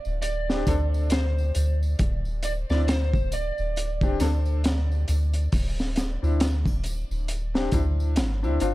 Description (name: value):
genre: trip hop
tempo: 68 BPM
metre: 4/4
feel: swing 59% on 16ths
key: unclear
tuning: A4 = 445 Hz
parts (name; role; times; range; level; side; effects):
- electric slide guitar; melody; 0.0-8.1 s; C5 to D5; -34 LUFS; right 3 dB; vintage 12-bit sampler grit, tape echo
- tambourine and triangle; percussion; 0.0-8.7 s; none; -46 LUFS; equal; none
- soft dub sub bass; bass; 0.1-8.7 s; D1 to D2; -25 LUFS; equal; none
- crunchy breakbeat drum kit; drums; 0.2-8.7 s; hi-hat, kick drum, snare drum; -26 LUFS; equal; none
- clear upright piano; accompaniment; 0.5-8.7 s; C4 to A4; -31 LUFS; left 3 dB; tremolo, tape echo
room: small room ambience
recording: dark, warm production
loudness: -22 LUFS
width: side -17 dB against mid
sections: 0.0-8.7 A section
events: none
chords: 0.0 D7(no3); 2.0 Cadd9/D